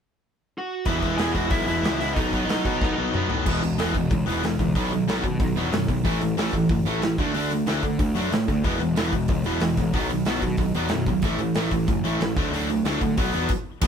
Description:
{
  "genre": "punk rock",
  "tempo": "185 BPM",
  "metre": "4/4",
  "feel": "straight",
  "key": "E major",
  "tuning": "A4 = 440 Hz",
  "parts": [
    { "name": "bluesy overdriven lead guitar", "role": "melody", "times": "0.6-3.3, 13.8-13.9 s", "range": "D#4 to G#5", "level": "-28 LUFS", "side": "right 1 dB", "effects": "distortion" },
    { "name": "cranked stack guitar", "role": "riff", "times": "0.9-13.9 s", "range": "A2 to E4", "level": "-27 LUFS", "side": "left 8 dB", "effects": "overdrive" },
    { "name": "distorted electric guitar", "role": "riff", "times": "0.9-13.9 s", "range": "E2 to D4", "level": "-26 LUFS", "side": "right 6 dB", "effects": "distortion" },
    { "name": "fuzz picked electric bass", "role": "bass", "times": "0.9-13.9 s", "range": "E1 to D3", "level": "-29 LUFS", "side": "equal", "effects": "overdrive" },
    { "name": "big rock drum kit", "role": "drums", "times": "0.9-13.9 s", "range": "crash cymbal, hi-hat, kick drum, snare drum, toms", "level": "-27 LUFS", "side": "equal", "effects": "none" }
  ],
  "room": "light reverb",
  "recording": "band playing live in one room",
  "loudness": "-21 LUFS",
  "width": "side -7 dB against mid",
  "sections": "0.9-3.5 A section; 3.5-13.8 B section",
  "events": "drum fill 2.8-3.5; stop 13.5-13.8",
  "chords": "0.0 N.C.; 0.9 E; 2.2 B; 3.5 E; 4.8 B; 6.1 A5; 7.2 D5; 8.7 E; 9.9 B; 11.2 A5; 12.4 D; 13.2 B5"
}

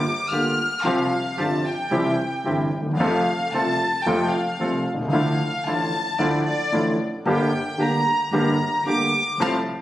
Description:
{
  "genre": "tango",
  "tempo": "112 BPM",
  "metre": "4/4",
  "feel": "rubato",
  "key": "unclear",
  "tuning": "A4 = 444 Hz",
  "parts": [
    { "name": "warm chamber violin section", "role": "second line", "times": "0.0-9.6 s", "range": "C5 to F6", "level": "-24 LUFS", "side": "left 1 dB", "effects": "none" },
    { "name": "warm concert grand piano", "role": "accompaniment", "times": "0.3-9.6 s", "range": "G1 to G4", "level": "-22 LUFS", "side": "equal", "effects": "none" },
    { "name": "bandoneon", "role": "stabs", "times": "0.3-9.6 s", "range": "A3 to A4", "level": "-30 LUFS", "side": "right 1 dB", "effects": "none" },
    { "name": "upright bass", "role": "bass", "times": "0.3-9.6 s", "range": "G1 to F2", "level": "-36 LUFS", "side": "equal", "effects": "none" }
  ],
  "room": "moderate concert hall reverb, RT60 1.9 s",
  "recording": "recorded on a phone in the room, studio reverb",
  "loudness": "-20 LUFS",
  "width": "side -14 dB against mid",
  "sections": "0.0-9.8 A section",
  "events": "violin section solo 0.0-9.8; band accent 9.4-9.8",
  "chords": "0.0 Gm7; 0.8 Csus4; 1.9 C; 3.0 F; 5.1 Dmadd9; 7.3 Gm"
}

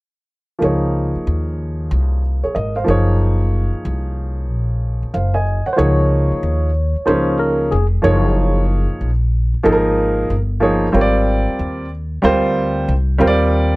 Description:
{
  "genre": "hip hop",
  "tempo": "93 BPM",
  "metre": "4/4",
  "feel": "swing 64% on 16ths",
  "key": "Db major",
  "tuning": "A4 = 440 Hz",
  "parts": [
    { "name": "warm upright piano", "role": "accompaniment", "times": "0.6-13.8 s", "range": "F3 to Ab5", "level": "-18 LUFS", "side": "right 1 dB", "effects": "none" },
    { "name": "upright bass", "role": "bass", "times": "0.6-13.8 s", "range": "F1 to Eb2", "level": "-17 LUFS", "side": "equal", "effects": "none" },
    { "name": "mellow tine electric piano", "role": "melody", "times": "5.7-8.6 s", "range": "Ab4 to Db5", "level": "-21 LUFS", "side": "equal", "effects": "overdrive, slow stereo tremolo" }
  ],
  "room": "light reverb",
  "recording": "dark, warm production",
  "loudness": "-15 LUFS",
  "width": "side -22 dB against mid",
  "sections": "0.6-5.8 A section; 5.8-13.8 B section",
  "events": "none",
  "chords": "0.6 Dbmaj9; 2.9 Gbmaj9; 5.8 Dbadd9; 8.0 Gbmaj9; 10.9 Abmaj9; 13.2 Ebmaj9"
}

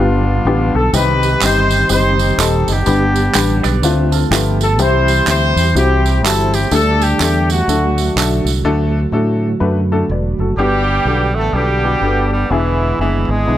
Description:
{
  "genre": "uptempo gospel",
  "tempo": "124 BPM",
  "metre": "4/4",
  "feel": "swing 61% on 8ths",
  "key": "G major",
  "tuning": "A4 = 442 Hz",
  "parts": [
    { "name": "clear horn section", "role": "melody", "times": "0.0-13.6 s", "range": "G#3 to C5", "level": "-17 LUFS", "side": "left 1 dB", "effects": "none" },
    { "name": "warm upright piano", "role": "accompaniment", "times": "0.0-13.6 s", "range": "G2 to D5", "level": "-19 LUFS", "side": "left 3 dB", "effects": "none" },
    { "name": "mellow tonewheel organ", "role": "sustained chords", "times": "0.0-13.6 s", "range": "D3 to F#5", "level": "-22 LUFS", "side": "right 2 dB", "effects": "slow rotary speaker, chorus vibrato" },
    { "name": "fingered electric bass", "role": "bass", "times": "0.0-13.6 s", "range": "Eb1 to A2", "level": "-16 LUFS", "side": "equal", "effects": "none" },
    { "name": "tambourine and handclaps", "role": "percussion", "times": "0.9-8.6 s", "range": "none", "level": "-21 LUFS", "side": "right 8 dB", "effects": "none" },
    { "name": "electric guitar with an envelope filter", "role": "second line", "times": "3.6-4.6 s", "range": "F4 to D5", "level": "-26 LUFS", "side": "right 9 dB", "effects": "phaser" },
    { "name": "bright tenor saxophone", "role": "melody", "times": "10.6-13.6 s", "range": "E3 to A3", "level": "-20 LUFS", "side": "right 4 dB", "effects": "none" }
  ],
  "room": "light reverb, small room reverb",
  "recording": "none",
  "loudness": "-12 LUFS",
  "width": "side -12 dB against mid",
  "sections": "0.0-8.6 A section; 8.6-10.6 B section; 10.6-13.6 C section",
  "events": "none",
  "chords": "0.0 G7; 0.9 Cm; 2.9 G; 3.8 Dm7; 4.3 G9; 4.8 C; 6.7 Dsus4; 7.7 D; 10.6 Gmaj7; 12.5 E7"
}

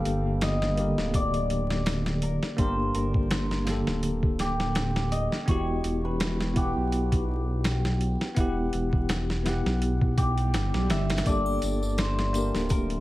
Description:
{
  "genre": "trip hop",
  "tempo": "83 BPM",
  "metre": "4/4",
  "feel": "swing 55% on 16ths",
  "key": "unclear",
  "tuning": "A4 = 439 Hz",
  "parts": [
    { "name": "cimbalom", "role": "melody", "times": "0.0-13.0 s", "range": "G4 to G5", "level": "-33 LUFS", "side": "left 1 dB", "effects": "tape echo" },
    { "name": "bell-like tine electric piano", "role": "accompaniment", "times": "0.0-13.0 s", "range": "D3 to F#5", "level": "-30 LUFS", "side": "left 1 dB", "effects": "fast stereo tremolo, harmonic tremolo, tape echo" },
    { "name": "dark detuned saw bass", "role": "bass", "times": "0.1-13.0 s", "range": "D1 to B1", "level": "-28 LUFS", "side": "equal", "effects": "none" },
    { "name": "boom bap sampler-style drum kit", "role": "drums", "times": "0.1-13.0 s", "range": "hi-hat, kick drum, snare drum", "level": "-29 LUFS", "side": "equal", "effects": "none" },
    { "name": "swell", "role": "sound effects", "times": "10.3-11.3 s", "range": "none", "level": "-38 LUFS", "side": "right 3 dB", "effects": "none" },
    { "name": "tambourine and triangle", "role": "percussion", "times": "11.3-12.9 s", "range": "none", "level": "-44 LUFS", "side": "left 2 dB", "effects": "none" }
  ],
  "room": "little or no reverb",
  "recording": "vinyl crackle",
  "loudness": "-24 LUFS",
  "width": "side -17 dB against mid",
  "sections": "0.0-13.0 A section",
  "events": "swell 10.3-11.3",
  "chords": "0.0 Gmadd9; 5.5 Emadd9; 11.3 Gmadd9"
}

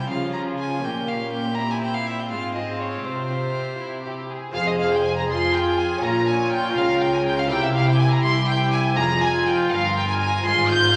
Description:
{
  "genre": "classical, baroque-style concerto movement with solo episodes",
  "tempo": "81 BPM (dotted quarters)",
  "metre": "6/8",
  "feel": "straight",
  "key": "F minor",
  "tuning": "A4 = 440 Hz",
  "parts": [
    { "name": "rich violin", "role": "melody", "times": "0.0-11.0 s", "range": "C5 to G6", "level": "-29 LUFS", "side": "equal", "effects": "none" },
    { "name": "warm chamber violin section", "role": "melody", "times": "0.0-10.9 s", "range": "G4 to G6", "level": "-30 LUFS", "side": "equal", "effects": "none" },
    { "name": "rich chamber violin section", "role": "second line", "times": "0.0-11.0 s", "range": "Db4 to Db5", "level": "-34 LUFS", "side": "equal", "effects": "none" },
    { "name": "lute", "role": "accompaniment", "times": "0.0-11.0 s", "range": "F2 to Bb4", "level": "-35 LUFS", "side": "equal", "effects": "none" },
    { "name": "warm chamber viola section", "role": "accompaniment", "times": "0.0-11.0 s", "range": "F3 to Ab4", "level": "-27 LUFS", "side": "equal", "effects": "none" },
    { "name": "dark chamber cello section", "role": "bass", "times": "0.0-11.0 s", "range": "C2 to F3", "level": "-30 LUFS", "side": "equal", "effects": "none" },
    { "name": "rich chamber double bass section", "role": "bass", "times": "4.6-11.0 s", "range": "F1 to F2", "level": "-30 LUFS", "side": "equal", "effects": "none" }
  ],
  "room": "wet recital hall reverb, RT60 1.5 s",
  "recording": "none",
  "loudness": "-22 LUFS",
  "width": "mono",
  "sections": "0.0-4.6 A section; 4.6-11.0 B section",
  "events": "none",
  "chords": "0.1 Db; 0.8 Gdim/Bb; 1.6 C7/Bb; 2.3 Fm/Ab; 3.1 Csus4; 3.8 C; 4.6 Fm; 6.0 Bbm; 7.5 C7; 9.0 Fm; 10.5 Fm/Ab"
}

